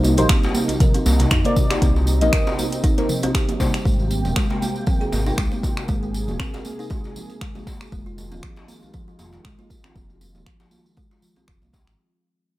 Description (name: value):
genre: afro house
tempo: 118 BPM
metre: 4/4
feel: swing 55% on 16ths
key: unclear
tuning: A4 = 442 Hz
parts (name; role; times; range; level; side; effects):
- warm analog pad; sustained chords; 0.0-11.9 s; C3 to G5; -29 LUFS; right 1 dB; chorus, sidechain pumping
- kalimba; arpeggios; 0.0-11.6 s; F3 to C5; -28 LUFS; equal; sidechain pumping, digital delay
- smooth synth bass; bass; 0.0-12.0 s; Eb1 to F2; -21 LUFS; equal; sidechain pumping
- congas; percussion; 0.0-11.8 s; none; -30 LUFS; right 3 dB; none
- djembe; percussion; 0.0-11.8 s; none; -32 LUFS; left 2 dB; none
- tambourine; percussion; 0.0-12.0 s; none; -36 LUFS; right 1 dB; none
- deep mellow chord stab; stabs; 0.2-3.8 s; Bb3 to Eb5; -25 LUFS; left 2 dB; chorus, phaser, sidechain pumping, digital delay
- afro-pop drum kit; drums; 0.2-12.0 s; finger snaps, hi-hat, toms; -26 LUFS; equal; overdrive, small room ambience
- electronic kick drum; drums; 0.3-11.8 s; none; -21 LUFS; equal; small room ambience
room: little or no reverb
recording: none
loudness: -18 LUFS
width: side -17 dB against mid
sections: 0.0-12.0 A section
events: fade-out 0.0-12.0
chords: 0.0 Cm7; 3.9 Abmaj9; 7.9 Fm7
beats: 0.29 0.80 1.31 | 1.82 2.33 2.84 3.34 | 3.85 4.36 4.87 5.38 | 5.89 6.39 6.90 7.41 | 7.92 8.43 8.94 9.45 | 9.95 10.46 10.97 11.48